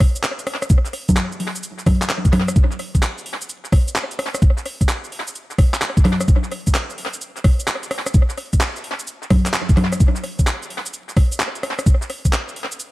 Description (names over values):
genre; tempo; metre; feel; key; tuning
UK garage; 129 BPM; 4/4; swing 66% on 16ths; none; none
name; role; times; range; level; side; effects
electronic kick drum; drums; 0.0-12.3 s; none; -14 LUFS; equal; none
garage drum kit; drums; 0.0-12.9 s; congas, handclaps, hi-hat, rim click, shaker; -22 LUFS; equal; tape echo
room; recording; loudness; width
light reverb, digital ambience; echo-heavy mix, vinyl crackle; -17 LUFS; side -18 dB against mid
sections
0.0-12.9 A section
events
none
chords
none